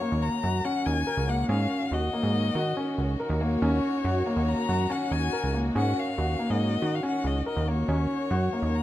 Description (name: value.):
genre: contemporary instrumental, chamber music in an uneven meter.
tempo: 141 BPM.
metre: 5/4.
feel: straight.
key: Eb minor.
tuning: A4 = 440 Hz.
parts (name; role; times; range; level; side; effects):
rich violin; melody; 0.0-8.8 s; Db5 to Bb5; -32 LUFS; left 6 dB; none.
warm studio string section; sustained chords; 0.0-8.8 s; Eb3 to Gb4; -35 LUFS; left 1 dB; none.
warm grand piano; arpeggios; 0.0-8.8 s; Bb3 to Bb4; -29 LUFS; equal; none.
plucky analog bass; bass; 0.1-8.8 s; Db2 to Eb3; -28 LUFS; right 1 dB; none.
room: light reverb.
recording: close, detailed microphones.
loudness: -24 LUFS.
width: side -14 dB against mid.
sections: 0.0-8.8 A section.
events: none.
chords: 0.0 Ebm7.